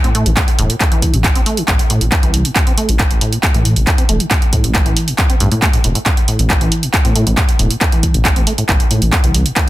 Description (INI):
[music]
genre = driving peak-time techno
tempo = 137 BPM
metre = 4/4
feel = straight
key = A phrygian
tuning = A4 = 441 Hz
[part]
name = acid bass, saw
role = riff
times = 0.0-9.5 s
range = G2 to C4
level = -20 LUFS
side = equal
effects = sidechain pumping, tape echo
[part]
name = dark detuned saw bass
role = bass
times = 0.0-9.4 s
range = E1 to A2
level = -16 LUFS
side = equal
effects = sidechain pumping
[part]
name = techno drum kit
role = drums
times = 0.0-9.7 s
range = handclaps, hi-hat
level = -17 LUFS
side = right 1 dB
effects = sidechain pumping on hats, sidechain pumping on toms
[part]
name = electronic kick drum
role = drums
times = 0.4-9.7 s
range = none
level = -15 LUFS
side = equal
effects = none
[sound]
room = digital ambience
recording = dense, heavily limited modern master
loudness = -11 LUFS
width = side -16 dB against mid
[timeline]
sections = 0.0-9.7 A section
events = filter sweep on acid bass 0.0-9.7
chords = 0.0 A5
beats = 0.37 | 0.81 1.24 1.68 2.12 | 2.56 3.00 3.43 3.87 | 4.31 4.75 5.18 5.62 | 6.06 6.50 6.94 7.38 | 7.81 8.25 8.69 9.13 | 9.56